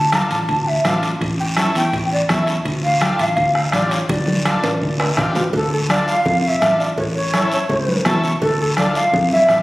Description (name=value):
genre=latin, cumbia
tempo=166 BPM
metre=4/4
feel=straight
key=D harmonic minor, D minor from 5.5 s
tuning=A4 = 441 Hz
part: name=breathy shakuhachi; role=melody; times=0.0-9.6 s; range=A4 to Bb5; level=-19 LUFS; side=equal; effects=none
part: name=fingered electric bass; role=bass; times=0.0-9.6 s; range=A1 to F2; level=-22 LUFS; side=equal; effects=none
part: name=combo organ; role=accompaniment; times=0.1-9.6 s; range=C#4 to A5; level=-24 LUFS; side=left 1 dB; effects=none
part: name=bombo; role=percussion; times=0.1-9.6 s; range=none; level=-24 LUFS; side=equal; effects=none
part: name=congas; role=percussion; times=0.1-9.6 s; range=none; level=-24 LUFS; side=equal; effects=none
part: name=guiro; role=percussion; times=0.1-9.6 s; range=none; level=-29 LUFS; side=left 1 dB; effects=none
part: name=timbales and cowbell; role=percussion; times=0.1-9.6 s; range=none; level=-28 LUFS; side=right 1 dB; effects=none
room=wet large studio reverb, RT60 1.4 s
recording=recorded on a phone in the room, club reverb, compression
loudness=-15 LUFS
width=side -19 dB against mid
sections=0.0-5.5 A section; 5.5-9.6 B section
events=drum fill 4.1-5.5; transistor combo organ fill 7.9-8.4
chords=0.0 Dm; 1.2 A7; 2.7 Dm; 7.0 A; 8.4 Dm